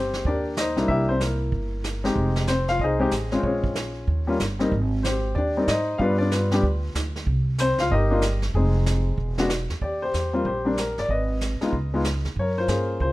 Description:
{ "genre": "jazz piano trio", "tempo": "188 BPM", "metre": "4/4", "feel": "swing 63% on 8ths", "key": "Eb major", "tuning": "A4 = 440 Hz", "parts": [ { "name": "warm upright piano", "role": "melody", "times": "0.0-13.1 s", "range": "G3 to F5", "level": "-24 LUFS", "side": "left 2 dB", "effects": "none" }, { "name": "upright bass", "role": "bass", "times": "0.0-13.1 s", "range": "E1 to Ab2", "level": "-25 LUFS", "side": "right 1 dB", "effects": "none" }, { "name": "vintage brush drum kit", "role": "drums", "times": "0.1-13.1 s", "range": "brushed snare drum, hi-hat, kick drum, snare drum", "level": "-32 LUFS", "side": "right 2 dB", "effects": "none" } ], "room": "light reverb", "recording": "close, detailed microphones", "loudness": "-21 LUFS", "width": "side -18 dB against mid", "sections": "0.0-9.8 A section; 9.8-13.1 B section", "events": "none", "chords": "0.0 Abmaj9 (rootless); 0.9 C7; 2.2 Fm7; 3.4 Bbm7; 4.1 Eb7; 4.7 Abmaj7; 6.0 G7; 7.3 Cm11; 8.5 Fm7; 9.2 E; 9.8 Eb6; 11.1 Abm; 11.7 Db7(no3); 12.4 Gbmaj7" }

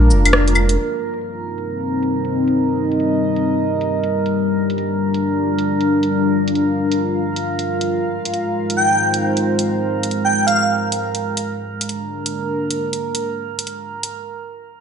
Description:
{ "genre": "future garage", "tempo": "135 BPM", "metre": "4/4", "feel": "swing 64% on 16ths", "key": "C minor", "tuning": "A4 = 440 Hz", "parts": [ { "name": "dark analog pad", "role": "sustained chords", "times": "0.0-14.1 s", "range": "G3 to F5", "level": "-19 LUFS", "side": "left 1 dB", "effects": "chorus" }, { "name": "warm sub bass", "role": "bass", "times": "0.0-0.8 s", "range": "F1 to Bb1", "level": "-14 LUFS", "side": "equal", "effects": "tube saturation" }, { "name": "drifting glass-harmonics texture", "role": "texture", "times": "0.0-14.1 s", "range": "Bb4", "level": "-26 LUFS", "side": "right 6 dB", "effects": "chorus, built-in reverb" }, { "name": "garage drum kit", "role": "drums", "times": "0.1-14.1 s", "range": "cabasa, claves, hi-hat, rim click", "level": "-21 LUFS", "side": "left 1 dB", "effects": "low-pass filter on perc, studio reverb, low-pass filter on hats, low-pass filter on snare" }, { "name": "airy dreamy lead", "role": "melody", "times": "8.8-10.6 s", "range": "F5 to G5", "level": "-18 LUFS", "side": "equal", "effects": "chorus, analog delay" } ], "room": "moderate lush hall reverb, RT60 2.0 s, digital ambience", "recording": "nothing above 10.8 kHz", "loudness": "-17 LUFS", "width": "side -7 dB against mid", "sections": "0.8-14.8 A section", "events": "filter sweep on drum 0.8-14.8; break 14.1-14.8", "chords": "0.0 Bb7; 0.8 Cm7; 4.3 Gm7; 7.9 Ab6; 11.4 Bb7" }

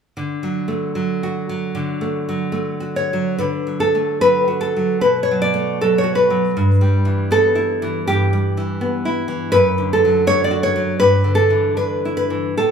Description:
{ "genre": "romantic piece for solo classical guitar", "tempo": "66-84 BPM", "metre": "4/4", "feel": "rubato", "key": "D major", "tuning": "A4 = 440 Hz", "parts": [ { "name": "nylon-string guitar", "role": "solo", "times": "0.2-12.7 s", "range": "F#2 to D5", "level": "-16 LUFS", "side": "equal", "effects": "none" } ], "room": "wet large studio reverb, RT60 1.1 s", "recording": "band playing live in one room", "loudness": "-16 LUFS", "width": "side -7 dB against mid", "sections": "0.2-3.4 A section; 3.4-12.7 B section", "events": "none", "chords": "0.2 D; 5.0 B5; 6.5 Em/G; 9.5 D/F#; 11.0 Em7/G" }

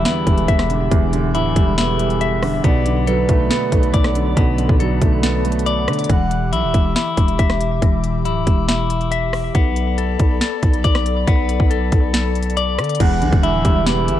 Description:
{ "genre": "hip hop, trap", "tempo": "139 BPM", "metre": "4/4", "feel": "half-time", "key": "E minor", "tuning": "A4 = 440 Hz", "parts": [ { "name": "breathy flute-like synth lead", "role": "second line", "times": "0.0-7.3, 13.0-14.2 s", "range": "B4 to F#5", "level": "-26 LUFS", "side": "right 4 dB", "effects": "chorus, digital delay" }, { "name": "warm baby grand piano", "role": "accompaniment", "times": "0.0-6.1, 13.0-14.2 s", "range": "E2 to B3", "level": "-22 LUFS", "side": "right 4 dB", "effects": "low-pass filter" }, { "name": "airy breathy pad", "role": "sustained chords", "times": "0.0-14.2 s", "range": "G4 to D6", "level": "-29 LUFS", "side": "right 2 dB", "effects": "chorus" }, { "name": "clean electric guitar", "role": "arpeggios", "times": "0.0-14.2 s", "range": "E3 to E5", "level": "-22 LUFS", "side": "left 7 dB", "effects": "low-pass filter, digital delay" }, { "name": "growling 808-style bass", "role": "bass", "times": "0.0-14.2 s", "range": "D1 to D3", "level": "-21 LUFS", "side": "equal", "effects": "none" }, { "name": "trap drum kit", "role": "drums", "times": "0.1-14.2 s", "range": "crash cymbal, hi-hat, kick drum, rim click, snare drum", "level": "-18 LUFS", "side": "equal", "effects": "vintage 12-bit sampler grit" } ], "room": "little or no reverb", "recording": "dark, warm production", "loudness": "-15 LUFS", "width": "side -12 dB against mid", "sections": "0.0-13.0 A section; 13.0-14.2 B section", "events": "none", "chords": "0.0 Em7; 2.6 Bm7; 6.1 Em7; 9.5 Bm7; 13.0 Em7" }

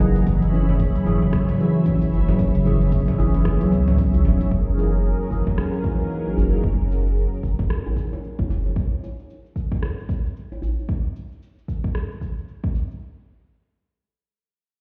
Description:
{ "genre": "organic downtempo", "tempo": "113 BPM", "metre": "4/4", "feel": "swing 60% on 16ths", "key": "F# mixolydian", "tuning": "A4 = 440 Hz", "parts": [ { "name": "overdriven tine electric piano", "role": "accompaniment", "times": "0.0-6.6 s", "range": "E3 to G#4", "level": "-31 LUFS", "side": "equal", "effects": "phaser, sidechain pumping, low-pass filter, delay" }, { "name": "warm analog pad", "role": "sustained chords", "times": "0.0-8.7 s", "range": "F#3 to B5", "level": "-33 LUFS", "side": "equal", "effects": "chorus, sidechain pumping" }, { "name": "steel tongue drum", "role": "arpeggios", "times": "0.0-4.4 s", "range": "C#3 to C#4", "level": "-25 LUFS", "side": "equal", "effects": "delay" }, { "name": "warm sub bass", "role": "bass", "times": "0.0-8.7 s", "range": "E1 to C#2", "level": "-23 LUFS", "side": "equal", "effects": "sidechain pumping" }, { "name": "organic electronic drum kit", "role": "drums", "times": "0.0-13.0 s", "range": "cabasa, congas, hi-hat, rim click", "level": "-30 LUFS", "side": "equal", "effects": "none" }, { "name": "djembe", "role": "percussion", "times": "0.0-10.7 s", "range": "none", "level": "-31 LUFS", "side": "equal", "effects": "none" }, { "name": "electronic kick drum", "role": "drums", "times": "0.3-12.7 s", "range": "none", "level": "-26 LUFS", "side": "equal", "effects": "overdrive" } ], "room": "light reverb, digital ambience", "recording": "heard muffled through a wall, stone room reverb, EQ", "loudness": "-21 LUFS", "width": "mono", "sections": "0.0-4.5 A section; 4.5-13.0 B section; 13.0-14.8 C section", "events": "filter sweep on tine electric piano 4.5-6.6", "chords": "0.3 E6/F#; 4.5 F#13; 8.8 N.C." }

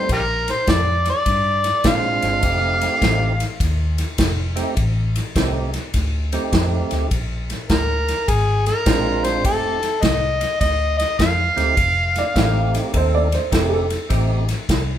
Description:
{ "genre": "electric blues shuffle", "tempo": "103 BPM", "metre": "4/4", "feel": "swing 65% on 8ths", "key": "F mixolydian", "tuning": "A4 = 439 Hz", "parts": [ { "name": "overdriven harmonica", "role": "melody", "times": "0.0-3.6, 7.7-12.9 s", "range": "F4 to F5", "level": "-20 LUFS", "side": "left 1 dB", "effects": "none" }, { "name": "percussive tonewheel organ", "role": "accompaniment", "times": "0.0-14.4 s", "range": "Ab3 to A4", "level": "-25 LUFS", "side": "right 4 dB", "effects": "slow rotary speaker" }, { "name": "vintage muted fingered electric bass", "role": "bass", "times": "0.1-15.0 s", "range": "F1 to Bb2", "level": "-22 LUFS", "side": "equal", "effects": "none" }, { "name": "natural country drum kit", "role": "drums", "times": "0.1-14.9 s", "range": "kick drum, ride cymbal, snare drum", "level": "-22 LUFS", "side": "equal", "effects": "none" }, { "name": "dark upright piano", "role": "second line", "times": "12.2-14.3 s", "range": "Ab4 to F5", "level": "-23 LUFS", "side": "right 3 dB", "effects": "none" } ], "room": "moderate large studio reverb, RT60 1.1 s", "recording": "band playing live in one room", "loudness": "-17 LUFS", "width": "side -10 dB against mid", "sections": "0.0-15.0 A section", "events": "none", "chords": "0.1 Bb9; 2.4 F9; 7.1 Bb9; 9.4 F9" }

